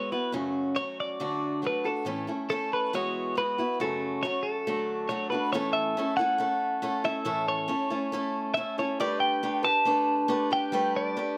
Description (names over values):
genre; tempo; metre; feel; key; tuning
rock; 138 BPM; 4/4; straight; A mixolydian from 5.5 s; A4 = 439 Hz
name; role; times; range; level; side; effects
twelve-string electric guitar; melody; 0.0-11.4 s; A4 to A5; -30 LUFS; equal; plate reverb
picked old ladder-braced acoustic guitar; accompaniment; 0.0-11.4 s; F#2 to B4; -32 LUFS; equal; plate reverb
room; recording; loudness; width
moderate studio ambience, RT60 0.5 s; none; -28 LUFS; mono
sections
0.0-5.5 A section; 5.5-11.4 B section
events
none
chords
0.3 F#m; 1.2 D; 2.1 A; 2.9 Eadd9; 3.8 F#m; 4.7 D; 5.5 A; 9.0 Gadd9